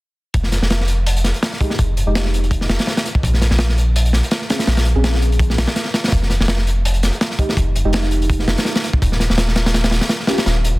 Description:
drum and bass, jungle; 166 BPM; 4/4; swing 54% on 16ths; F minor; A4 = 440 Hz
soft dub sub bass; bass; 0.3-10.8 s; Eb1 to Bb1; -17 LUFS; equal
crunchy breakbeat drum kit; drums; 0.3-10.7 s; hi-hat, kick drum, snare drum; -18 LUFS; equal
deep mellow chord stab; stabs; 1.6-10.4 s; Ab3 to Ab4; -25 LUFS; right 1 dB; chorus, dub echo
small room ambience; dense, heavily limited modern master; -15 LUFS; side -20 dB against mid
0.3-10.8 A section
0.3 Fm9; 3.2 Bbm9; 6.1 Fm9; 9.0 N.C.

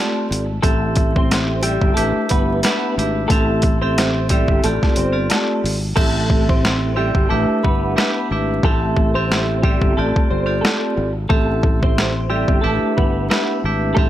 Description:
hip hop, boom-bap hip-hop; 90 BPM; 4/4; swing 56% on 16ths; A minor; A4 = 439 Hz
clean electric guitar; melody; 0.0-14.1 s; G3 to C5; -23 LUFS; equal; ensemble chorus, high-pass filter, low-pass filter
vibraphone with medium hard mallets; accompaniment; 0.0-14.1 s; A3 to E5; -21 LUFS; right 1 dB; high-pass filter, low-pass filter
sustaining fretless electric bass; bass; 0.3-14.1 s; G1 to A1; -22 LUFS; equal; lush chorus
boom bap sampler-style drum kit; drums; 0.3-14.1 s; crash cymbal, hi-hat, kick drum, snare drum; -18 LUFS; equal
little or no reverb; vinyl crackle; -15 LUFS; side -12 dB against mid
0.0-6.0 A section; 6.0-14.1 A section
hi-hats muted 6.0-14.1
0.0 G9sus4; 0.6 Am7; 2.0 Em7; 3.3 Am7; 4.6 G9sus4; 6.0 Am7; 7.3 Em7; 8.6 Am7; 10.0 G9sus4; 11.3 Am7; 12.6 Em7

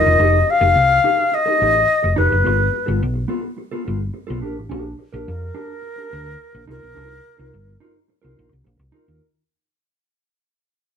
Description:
disco; 106 BPM; 4/4; straight; C dorian; A4 = 440 Hz
alto flute; melody; 0.0-7.8 s; Bb4 to F5; -16 LUFS; left 3 dB
mellow electric guitar; accompaniment; 0.0-9.2 s; B3 to Bb4; -26 LUFS; right 2 dB
hollow-body short-scale fingered electric bass; bass; 0.0-9.2 s; E1 to F2; -21 LUFS; equal
moderate studio reverb, RT60 0.7 s; band playing live in one room; -15 LUFS; side -7 dB against mid
0.0-9.2 A section
fade-out 0.0-9.2
0.2 F9; 2.4 G9; 4.4 Bb6; 6.7 Cm7

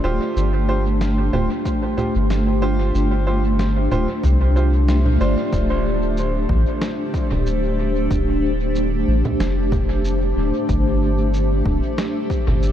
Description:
ambient dub; 93 BPM; 4/4; swing 54% on 16ths; D minor; A4 = 440 Hz
granular cloud pad; sustained chords; 0.0-12.7 s; A3 to C5; -22 LUFS; equal; built-in reverb
clear upright piano; stabs; 0.0-5.8 s; D4 to C5; -27 LUFS; right 3 dB; dub echo
soft dub sub bass; bass; 0.0-12.7 s; D1 to C2; -19 LUFS; equal
electronic shaker, snare drum and congas; drums; 0.4-12.7 s; -30 LUFS; right 1 dB; studio reverb, dub echo
electronic kick drum; drums; 1.7-12.4 s; -24 LUFS; equal; overdrive, studio reverb
light reverb; -17 LUFS; side -10 dB against mid
0.0-5.5 A section; 5.5-12.7 B section
band accent 4.9-5.2
0.4 Dm7; 10.7 Gsus4

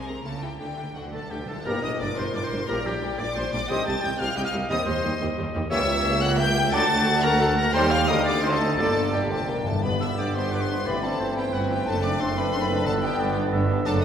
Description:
classical, dramatic, fast romantic movement for symphony orchestra; 178 BPM; 3/4; rubato; G minor, G major from 9.8 s; A4 = 444 Hz
rich symphonic violin section; melody; 0.0-14.0 s; F#5 to A6; -31 LUFS; left 3 dB
warm symphonic violin section; second line; 0.0-14.0 s; F#4 to A5; -33 LUFS; left 2 dB
rich symphonic double bass section; bass; 0.0-14.0 s; F#1 to Eb2; -32 LUFS; right 2 dB
warm symphonic cello section; bass; 0.0-14.0 s; C#2 to D3; -32 LUFS; right 2 dB
warm symphonic viola section; accompaniment; 0.1-13.9 s; G3 to G4; -33 LUFS; equal
timpani; percussion; 0.6-1.6, 8.8-13.3 s; G2 to D3; -34 LUFS; left 2 dB
clear oboe; second line; 1.1-14.0 s; G4 to A5; -32 LUFS; right 1 dB
mellow hollow silver concert flute; second line; 1.1-13.9 s; G4 to E6; -33 LUFS; left 2 dB
mellow French horn section; sustained chords; 1.7-14.0 s; G3 to C5; -34 LUFS; left 2 dB
warm trombone section; sustained chords; 1.7-14.0 s; G2 to D4; -34 LUFS; right 3 dB
dark trumpet section; stabs; 1.7-8.9 s; Bb4 to D5; -34 LUFS; right 1 dB
warm tuba; bass; 1.7-14.0 s; F#1 to Eb2; -31 LUFS; right 2 dB
tam-tam; percussion; 1.7-3.0 s; -39 LUFS; left 2 dB
clear clarinet; second line; 2.0-14.0 s; D4 to G5; -31 LUFS; left 1 dB
mellow bassoon; accompaniment; 9.1-14.0 s; F#3 to C4; -32 LUFS; equal
wet concert hall reverb, RT60 2.0 s; recorded in a church or concert hall, faint mains hum; -22 LUFS; side -8 dB against mid
0.0-1.7 A section; 1.7-9.8 B section; 9.8-14.0 C section
timpani fill 0.6-1.7, 8.8-9.8; band accent 1.7-2.0
0.2 C#dim7; 0.6 D5; 1.7 Gm; 2.7 Gm/Bb; 3.7 Cm; 4.7 Cm/Eb; 5.7 C#dim7; 6.7 D; 7.7 Cm/Eb; 8.1 Gm/D; 8.4 D7b9; 8.8 Gm; 9.8 G; 10.9 Am7/G; 11.9 D7/F#; 12.9 G

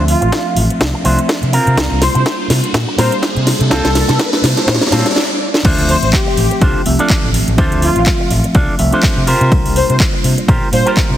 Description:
filtered disco house; 124 BPM; 4/4; swing 57% on 16ths; D minor; A4 = 440 Hz
mellow tine electric piano; accompaniment; 0.0-11.2 s; F3 to E5; -20 LUFS; equal; phaser, vintage 12-bit sampler grit, sidechain pumping, low-pass filter
electric guitar with an envelope filter; riff; 0.0-11.2 s; C4 to D5; -20 LUFS; right 1 dB; sidechain pumping, low-pass filter
overdriven fingered electric bass; bass; 0.0-11.2 s; A1 to C3; -16 LUFS; equal; sidechain pumping, low-pass filter
riser; sound effects; 0.6-5.2 s; -22 LUFS; equal
analog synth brass; melody; 0.1-10.9 s; F4 to C5; -20 LUFS; left 1 dB; chorus, sidechain pumping, low-pass filter, tape echo
house drum kit; drums; 0.1-11.1 s; crash cymbal, handclaps, hi-hat, ride cymbal, snare drum; -18 LUFS; equal; overdrive, sidechain pumping on hats, sidechain pumping on cymbals
electronic kick drum; drums; 0.3-11.1 s; -15 LUFS; equal; overdrive, high-pass filter on kick, high-pass filter on room
moderate echo chamber reverb, RT60 1.9 s, digital ambience; heavily compressed radio sound; -11 LUFS; side -12 dB against mid
0.0-5.6 A section; 5.6-11.2 B section
build-up 0.0-5.6; drum fill 0.0-5.2, 5.2-5.6; filter sweep 0.0-5.6; riser 0.6-5.2; break 5.2-5.6; drop 5.6-11.2
0.0 Dm7; 1.5 C7sus4; 5.6 Dm7; 9.3 C7sus4

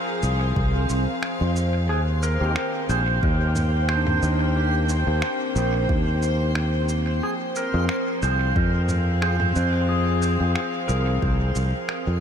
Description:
ambient dub; 90 BPM; 4/4; swing 54% on 16ths; F minor; A4 = 440 Hz
clean lap steel guitar; melody; 0.0-10.8 s; G4 to C5; -28 LUFS; right 2 dB; analog delay
rich chamber string section; sustained chords; 0.0-12.2 s; Eb3 to G5; -30 LUFS; left 2 dB
pedal steel guitar; arpeggios; 0.0-5.4, 10.9-12.2 s; D4 to C6; -35 LUFS; right 2 dB; lush chorus, analog delay
backwards swelling texture; texture; 0.0-12.2 s; C4 to C5; -31 LUFS; equal; built-in reverb
fingered electric bass; bass; 0.2-12.2 s; Bb1 to F2; -22 LUFS; equal
lo-fi sampler-style drum kit; drums; 0.2-12.0 s; finger snaps, shaker, toms; -34 LUFS; right 1 dB; overdrive, dub echo
electronic kick drum; drums; 0.6-11.4 s; -24 LUFS; equal; overdrive
tonewheel organ; stabs; 2.4-2.5, 7.7-10.6 s; C4 to Ab4; -38 LUFS; left 2 dB
moderate huge ambient reverb, RT60 9.5 s; dreamy mix soaked in reverb; -20 LUFS; side -8 dB against mid
0.0-12.2 A section
0.0 Fm; 1.9 Eb6; 7.2 Fm

